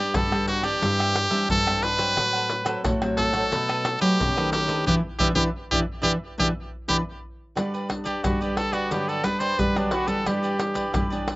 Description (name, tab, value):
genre	samba and choro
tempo	89 BPM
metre	4/4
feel	straight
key	E minor, G major from 7.6 s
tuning	A4 = 445 Hz
part	brilliant trumpet	melody	0.0-11.3 s	D4 to C5	-24 LUFS	equal	none
part	cavaquinho	accompaniment	0.0-11.4 s	D4 to F#5	-32 LUFS	right 2 dB	slapback echo
part	nylon-string guitar	accompaniment	0.0-11.4 s	F#2 to G4	-32 LUFS	left 1 dB	none
part	nylon-string guitar	bass	0.0-11.4 s	G2 to G3	-27 LUFS	equal	none
part	maracas, surdo, pandeiro and tamborim	percussion	0.1-11.4 s	none	-29 LUFS	equal	none
room	little or no reverb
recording	recorded outdoors, with no room sound, nothing above 7.8 kHz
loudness	-21 LUFS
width	side -21 dB against mid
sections	0.0-7.6 A section; 7.6-11.4 B section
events	band accent 4.9-7.6; trumpet solo 7.6-11.4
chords	0.0 G; 0.8 Cadd9/G; 2.2 F#dim/A; 3.5 B7; 4.9 Em7; 7.6 Gmaj7; 10.3 Em7/G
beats	0.15 0.82 1.50 | 2.17 2.85 3.52 4.20 | 4.87 5.55 6.22 6.89 | 7.57 8.24 8.92 9.59 | 10.27 10.94